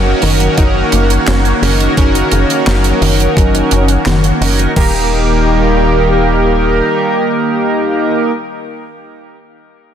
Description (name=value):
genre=synthwave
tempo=86 BPM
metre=4/4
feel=straight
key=Eb minor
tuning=A4 = 443 Hz
part: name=lush unison pad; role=sustained chords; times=0.0-8.3 s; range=D#3 to G4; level=-16 LUFS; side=equal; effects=chorus, phaser, sidechain pumping
part: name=wide unison pluck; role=arpeggios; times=0.0-5.1 s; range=Db3 to Eb4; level=-20 LUFS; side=left 2 dB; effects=ping-pong delay
part: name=chorused polysynth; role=stabs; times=0.0-8.3 s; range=Bb3 to Bb4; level=-15 LUFS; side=right 2 dB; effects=ping-pong delay
part: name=tight sequencer bass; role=bass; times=0.0-6.8 s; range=Eb1 to Gb1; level=-14 LUFS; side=equal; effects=sidechain pumping
part: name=deep reggae drum kit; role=drums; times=0.2-4.7 s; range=handclaps, hi-hat, snare drum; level=-19 LUFS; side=right 3 dB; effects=studio ambience
part: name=pop drum kit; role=drums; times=0.6-4.9 s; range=crash cymbal, kick drum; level=-14 LUFS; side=equal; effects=studio ambience
room=moderate lush hall reverb, RT60 2.8 s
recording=dense, heavily limited modern master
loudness=-10 LUFS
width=side -9 dB against mid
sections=0.0-4.8 A section; 4.8-7.6 B section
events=none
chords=0.0 Gb6; 4.8 Eb